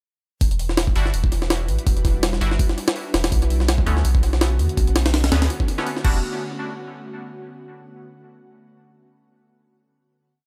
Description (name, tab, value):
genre	drum and bass, jungle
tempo	165 BPM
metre	4/4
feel	swing 55% on 16ths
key	E minor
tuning	A4 = 440 Hz
part	soft dub sub bass	bass	0.4-6.2 s	E1 to E2	-23 LUFS	equal	tube saturation
part	jungle sampler-style drum kit	drums	0.4-6.1 s	crash cymbal, hi-hat, kick drum, snare drum	-23 LUFS	equal	tape echo
part	band-passed chord stab	stabs	1.0-6.2 s	D3 to F#4	-34 LUFS	equal	chorus, vintage 12-bit sampler grit, tape echo
room	digital ambience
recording	echo-heavy mix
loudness	-21 LUFS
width	mono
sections	0.4-6.2 drop; 6.2-7.7 final hit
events	drop 0.4-6.2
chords	0.4 Em9; 3.3 Bm9; 6.0 Em9; 6.2 N.C.